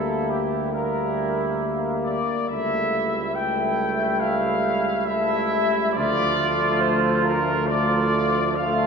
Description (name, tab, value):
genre	classical, hymn-like piece for brass band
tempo	69 BPM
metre	4/4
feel	rubato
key	D minor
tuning	A4 = 440 Hz
part	mellow trumpet section	melody	0.0-8.9 s	G4 to G5	-25 LUFS	left 4 dB	none
part	clear flugelhorn	second line	0.0-8.9 s	E4 to F4	-26 LUFS	right 6 dB	none
part	bright trombone section	accompaniment	0.0-8.9 s	A3 to Bb3	-27 LUFS	equal	none
part	mellow euphonium	accompaniment	0.0-8.9 s	F3 to G3	-30 LUFS	right 2 dB	none
part	mellow tuba	bass	0.0-8.9 s	C#2 to D2	-29 LUFS	right 1 dB	none
room	wet church reverb, RT60 3.5 s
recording	minimal, uncompressed stereo recording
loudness	-20 LUFS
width	side -5 dB against mid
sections	0.0-8.9 A section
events	none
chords	0.0 Em7b5/D; 2.5 A7/C#; 6.0 Dm